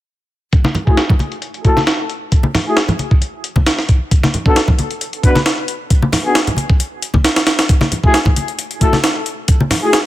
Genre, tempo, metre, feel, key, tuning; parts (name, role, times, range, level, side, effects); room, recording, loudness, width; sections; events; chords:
breakbeat, breaks; 134 BPM; 4/4; swing 53% on 16ths; F# minor; A4 = 440 Hz
breakbeat sampler-style drum kit; drums; 0.5-10.0 s; hi-hat, kick drum, snare drum; -13 LUFS; equal; low-pass filter on hats, low-pass filter on kick, low-pass filter on snare
congas; percussion; 0.6-9.8 s; -18 LUFS; left 1 dB
mellow brass ensemble; stabs; 0.9-10.0 s; A3 to B4; -19 LUFS; left 2 dB; low-pass filter, ping-pong delay
small room ambience; -12 LUFS; side -15 dB against mid
0.5-10.1 A section
filter sweep on brass ensemble 0.5-10.1
0.5 F#m9; 4.1 Bm; 7.7 F#m9